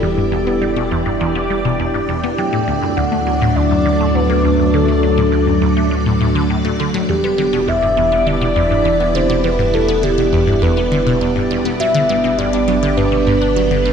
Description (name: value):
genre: ambient, sequencer-driven space music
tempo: 102 BPM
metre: 4/4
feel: straight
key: E minor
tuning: A4 = 440 Hz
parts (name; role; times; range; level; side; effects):
- soft octave-layered synth lead; melody; 0.0-13.9 s; G4 to G5; -18 LUFS; left 1 dB; chorus, tape echo
- string machine, full ensemble; sustained chords; 0.0-13.9 s; F#3 to D5; -18 LUFS; right 1 dB; ensemble chorus
- resonant blip pluck; riff; 0.0-13.9 s; D2 to D4; -19 LUFS; equal; phaser, tape echo
- round analog bass; bass; 0.0-13.9 s; E1 to D2; -22 LUFS; equal; none
room: wet concert hall reverb, RT60 1.9 s, digital ambience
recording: dark, warm production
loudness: -13 LUFS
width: side -7 dB against mid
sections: 0.0-13.9 A section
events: none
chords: 0.0 Em7; 2.4 D; 7.1 Em7; 11.8 G